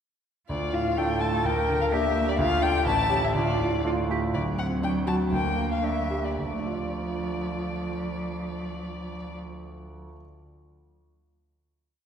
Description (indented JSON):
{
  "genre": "quick classical-period movement for piano trio",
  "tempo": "108-129 BPM",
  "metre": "2/4",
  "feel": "straight",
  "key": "D minor",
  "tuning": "A4 = 440 Hz",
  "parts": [
    { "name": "dark violin", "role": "melody", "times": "0.5-9.3 s", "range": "D5 to A5", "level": "-29 LUFS", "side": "left 4 dB", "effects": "none" },
    { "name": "rich cello", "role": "second line", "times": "0.5-9.4 s", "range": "F3 to Bb4", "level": "-31 LUFS", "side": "right 2 dB", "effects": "none" },
    { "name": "clear concert grand piano", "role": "accompaniment", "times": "0.5-10.2 s", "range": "A1 to D5", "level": "-28 LUFS", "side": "right 1 dB", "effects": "none" }
  ],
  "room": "wet concert hall reverb, RT60 2.3 s",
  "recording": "heard from further back in the room",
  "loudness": "-24 LUFS",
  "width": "side -8 dB against mid",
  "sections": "0.5-4.3 A section; 4.3-6.4 coda; 6.4-8.6 final chord",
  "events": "slowing down 3.8-6.4",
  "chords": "0.5 Dm; 1.4 Gm/D; 2.4 Dm; 2.9 A7; 3.3 Dm; 4.3 D7; 5.3 Gm/D; 6.4 Dm"
}